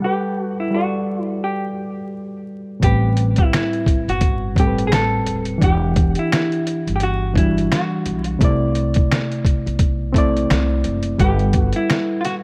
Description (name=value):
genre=lo-fi hip hop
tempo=86 BPM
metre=4/4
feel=swing 59% on 16ths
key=A dorian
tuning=A4 = 440 Hz
part: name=vintage hollow-body jazz guitar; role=melody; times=0.0-12.3 s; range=E4 to A4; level=-26 LUFS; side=equal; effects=low-pass filter
part: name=barky reed electric piano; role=accompaniment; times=0.0-12.4 s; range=A2 to F#5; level=-24 LUFS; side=equal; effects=overdrive, low-pass filter
part: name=upright bass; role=bass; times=2.8-11.7 s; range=D#1 to C2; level=-24 LUFS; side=equal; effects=none
part: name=dusty soul sampler-style drum kit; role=drums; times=2.8-12.4 s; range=finger snaps, hi-hat, kick drum, snare drum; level=-21 LUFS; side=equal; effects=none
room=light reverb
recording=vinyl crackle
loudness=-19 LUFS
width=mono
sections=0.0-2.8 A section; 2.8-12.4 B section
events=filter sweep 0.0-2.8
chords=0.0 Gmaj9; 2.8 Am9; 5.6 Em9; 8.4 C69; 11.2 Gmaj9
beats=| 0.03 0.73 1.42 2.12 | 2.82 3.52 4.21 4.91 | 5.61 6.31 7.00 7.70 | 8.40 9.10 9.80 10.49 | 11.19 11.89